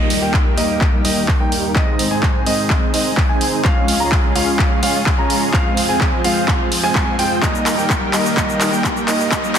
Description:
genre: EDM, festival progressive house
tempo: 127 BPM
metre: 4/4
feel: straight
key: Eb mixolydian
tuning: A4 = 440 Hz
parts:
  - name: lush unison pad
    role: sustained chords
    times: 0.0-9.6 s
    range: Db2 to Ab4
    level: -25 LUFS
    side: left 1 dB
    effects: chorus, sidechain pumping
  - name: warm grand piano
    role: arpeggios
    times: 0.0-9.6 s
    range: Eb5 to Bb5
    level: -23 LUFS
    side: right 1 dB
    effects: sidechain pumping, low-pass filter, ping-pong delay
  - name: dense compressed supersaw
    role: riff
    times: 0.0-9.6 s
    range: G3 to Bb5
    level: -20 LUFS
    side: equal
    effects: sidechain pumping, low-pass filter, ping-pong delay
  - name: house drum kit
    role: drums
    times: 0.1-9.6 s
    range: cabasa, handclaps, hi-hat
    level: -20 LUFS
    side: equal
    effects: overdrive
  - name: electronic kick drum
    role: drums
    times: 0.3-9.4 s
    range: none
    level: -18 LUFS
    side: equal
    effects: overdrive
  - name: riser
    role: sound effects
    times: 9.0-9.6 s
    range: none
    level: -32 LUFS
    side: right 1 dB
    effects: none
room: moderate digital room reverb, RT60 1.1 s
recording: dense, heavily limited modern master, high-pass filter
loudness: -14 LUFS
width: side -8 dB against mid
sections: 0.0-9.6 A section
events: build-up 0.0-9.6; drum fill 0.0-9.6; filter sweep on supersaw synth 0.0-9.6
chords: 0.0 Eb; 1.8 Ab; 3.6 Db; 5.5 Fm; 7.4 Eb

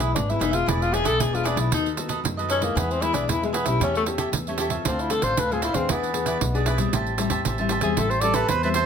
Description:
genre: samba and choro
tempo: 115 BPM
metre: 4/4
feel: straight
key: A harmonic minor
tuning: A4 = 440 Hz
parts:
  - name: breathy tenor saxophone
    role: second line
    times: 0.0-8.9 s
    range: G#3 to D5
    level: -25 LUFS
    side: left 3 dB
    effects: none
  - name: cavaquinho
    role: accompaniment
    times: 0.0-8.9 s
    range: D4 to A5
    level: -29 LUFS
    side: right 4 dB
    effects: none
  - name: nylon-string guitar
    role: accompaniment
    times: 0.0-8.9 s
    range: A2 to G#4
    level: -30 LUFS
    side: left 6 dB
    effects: none
  - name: upright bass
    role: bass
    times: 0.0-8.9 s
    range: E1 to F#2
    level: -27 LUFS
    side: equal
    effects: none
  - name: pandeiro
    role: percussion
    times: 0.0-8.9 s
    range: none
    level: -28 LUFS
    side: right 7 dB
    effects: none
  - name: accordion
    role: melody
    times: 8.2-8.9 s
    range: A4 to C5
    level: -23 LUFS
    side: right 8 dB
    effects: none
room: light reverb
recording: close, detailed microphones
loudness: -21 LUFS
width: side -7 dB against mid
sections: 0.0-8.9 A section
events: tenor saxophone solo 0.0-8.9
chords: 0.0 E7; 1.7 B7/D#; 2.8 E; 3.8 A7/E; 4.8 Dm7; 5.9 E7; 6.9 Am7

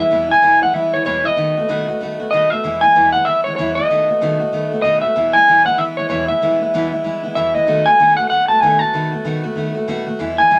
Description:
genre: rock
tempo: 191 BPM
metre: 4/4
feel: swing 61% on 8ths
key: E major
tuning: A4 = 438 Hz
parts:
  - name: electric guitar through a small old amp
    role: melody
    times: 0.0-10.6 s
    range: C#5 to A5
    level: -16 LUFS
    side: equal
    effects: none
  - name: picked steel-string acoustic guitar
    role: accompaniment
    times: 0.0-10.6 s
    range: E2 to F#4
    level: -24 LUFS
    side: equal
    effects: none
room: moderate studio ambience, RT60 0.4 s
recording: none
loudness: -16 LUFS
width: mono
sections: 0.1-10.2 A section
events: none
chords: 0.1 E; 1.4 B7; 2.6 E; 3.9 B7; 5.2 E; 7.7 B7

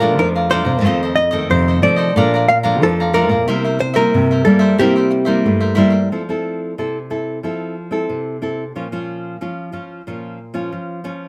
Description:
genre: samba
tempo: 91 BPM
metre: 4/4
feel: straight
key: F major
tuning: A4 = 437 Hz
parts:
  - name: hollow-body jazz guitar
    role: melody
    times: 0.0-5.4 s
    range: G4 to F5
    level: -20 LUFS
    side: equal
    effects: plate reverb
  - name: cavaquinho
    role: accompaniment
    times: 0.0-6.1 s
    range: E4 to Bb5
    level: -24 LUFS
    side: equal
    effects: none
  - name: nylon-string guitar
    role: accompaniment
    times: 0.0-11.3 s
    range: F2 to A4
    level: -23 LUFS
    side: equal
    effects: none
  - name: nylon-string guitar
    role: bass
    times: 0.0-6.1 s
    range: F2 to C4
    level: -19 LUFS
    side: equal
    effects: none
room: moderate studio reverb, RT60 0.5 s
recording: none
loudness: -17 LUFS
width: mono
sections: 0.0-6.1 A section; 6.1-11.3 B section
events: none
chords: 0.0 Bbmaj7; 0.9 F7; 2.2 Bbmaj7; 3.5 C7; 6.1 Fmaj7; 8.7 Bbm

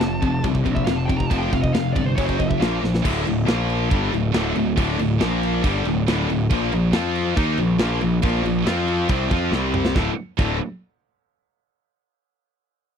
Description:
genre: heavy metal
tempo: 139 BPM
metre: 4/4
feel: straight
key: D phrygian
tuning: A4 = 438 Hz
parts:
  - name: high-gain lead guitar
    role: melody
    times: 0.0-2.7 s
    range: C5 to Bb5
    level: -28 LUFS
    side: right 1 dB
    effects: distortion, slapback echo
  - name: heavy high-gain guitar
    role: riff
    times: 0.0-10.6 s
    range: D2 to F4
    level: -25 LUFS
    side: right 12 dB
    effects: distortion
  - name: tight distorted guitar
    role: riff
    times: 0.0-10.6 s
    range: D2 to F4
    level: -24 LUFS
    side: left 11 dB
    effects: distortion
  - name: fuzz picked electric bass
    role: bass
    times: 0.0-10.6 s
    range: D1 to F2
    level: -24 LUFS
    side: right 1 dB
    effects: overdrive
  - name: tight metal drum kit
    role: drums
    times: 0.0-10.5 s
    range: crash cymbal, kick drum, snare drum, toms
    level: -24 LUFS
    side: right 1 dB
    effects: none
room: little or no reverb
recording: dry, close 1970s-style studio recording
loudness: -18 LUFS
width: side -7 dB against mid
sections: 0.0-3.0 A section; 3.0-10.0 B section; 10.0-11.7 C section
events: lead electric guitar solo 0.0-3.0; drum fill 2.8, 9.5-10.0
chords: 0.0 F; 2.2 F#5; 2.6 Bb5; 3.0 D5; 3.5 Bb5; 3.9 D5; 5.2 Bb5; 5.6 D5; 6.5 Bb5; 6.9 F5; 7.4 Bb5; 8.7 F5; 9.1 Csus4; 9.5 C5; 10.0 D5

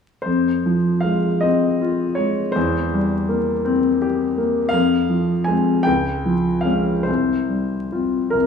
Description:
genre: classical, romantic nocturne for solo piano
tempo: 47-55 BPM (dotted quarters)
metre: 6/8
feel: rubato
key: F minor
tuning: A4 = 440 Hz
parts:
  - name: clear baby grand piano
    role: solo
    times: 0.2-8.5 s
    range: C2 to Ab5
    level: -17 LUFS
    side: left 1 dB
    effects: none
room: wet recital hall reverb, RT60 1.4 s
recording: vinyl crackle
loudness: -17 LUFS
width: side -6 dB against mid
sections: 0.3-8.5 A section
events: none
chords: 0.3 Fm; 2.6 C7/E; 4.7 Fm; 5.9 Db; 7.1 Csus4

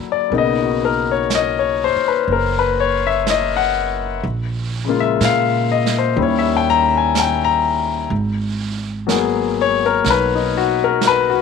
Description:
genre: jazz ballad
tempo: 62 BPM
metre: 4/4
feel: swing 66% on 8ths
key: G# minor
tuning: A4 = 439 Hz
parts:
  - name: clear concert grand piano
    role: accompaniment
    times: 0.0-11.4 s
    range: C#3 to A#5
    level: -16 LUFS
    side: left 10 dB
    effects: none
  - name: upright bass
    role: bass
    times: 0.3-11.4 s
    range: F#1 to A#2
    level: -23 LUFS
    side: right 3 dB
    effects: none
  - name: vintage brush drum kit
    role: drums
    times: 0.3-11.4 s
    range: brushed snare drum, hi-hat, snare drum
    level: -27 LUFS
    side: right 9 dB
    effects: none
room: light reverb, small room ambience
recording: 1960s-style stereo with parts hard left and right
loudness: -15 LUFS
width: side -5 dB against mid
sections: 0.0-11.4 A section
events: none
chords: 0.3 Bmaj9; 4.2 A#m7; 6.2 D#7b9; 8.1 G#m9

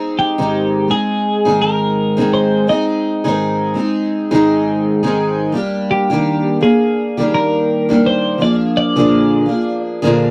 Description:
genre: pop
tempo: 84 BPM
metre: 4/4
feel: swing 60% on 16ths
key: unclear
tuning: A4 = 441 Hz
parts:
  - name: picked steel-string acoustic guitar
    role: accompaniment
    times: 0.0-10.3 s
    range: Ab2 to Ab4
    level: -17 LUFS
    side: equal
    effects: double-tracked
  - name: twelve-string electric guitar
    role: melody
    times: 0.2-9.8 s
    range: G4 to Eb5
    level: -20 LUFS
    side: equal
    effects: subtle chorus
room: light reverb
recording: dry, close 1970s-style studio recording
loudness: -16 LUFS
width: mono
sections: 0.0-10.3 A section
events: none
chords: 0.0 Ab; 5.5 Ebmaj7; 8.4 Bb7

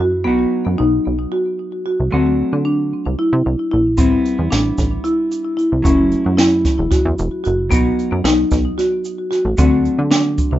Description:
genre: progressive instrumental, band music in an uneven meter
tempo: 225 BPM (eighths)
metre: 7/8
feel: straight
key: unclear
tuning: A4 = 439 Hz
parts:
  - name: hollow-body jazz guitar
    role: accompaniment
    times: 0.0-10.6 s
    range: F#3 to F#4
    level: -26 LUFS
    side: right 3 dB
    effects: plate reverb
  - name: marimba with medium mallets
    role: arpeggios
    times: 0.0-10.6 s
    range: B3 to F#4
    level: -17 LUFS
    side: left 1 dB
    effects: ping-pong delay, plate reverb
  - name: plucky analog bass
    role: bass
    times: 0.0-10.6 s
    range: E1 to D3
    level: -19 LUFS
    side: right 1 dB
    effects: none
  - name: jazz brush drum kit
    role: drums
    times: 4.0-10.5 s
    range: hi-hat, kick drum, snare drum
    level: -18 LUFS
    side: right 1 dB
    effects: none
  - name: tube shaker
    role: percussion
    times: 4.0-10.6 s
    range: none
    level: -36 LUFS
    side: right 3 dB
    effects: none
room: moderate small room reverb, RT60 0.5 s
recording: rough home demo mix, nothing above 7.7 kHz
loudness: -14 LUFS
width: side -13 dB against mid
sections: 0.0-10.6 A section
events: none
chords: 0.3 B; 2.1 D; 4.0 Am7; 5.8 F#m7; 7.7 B; 9.6 D

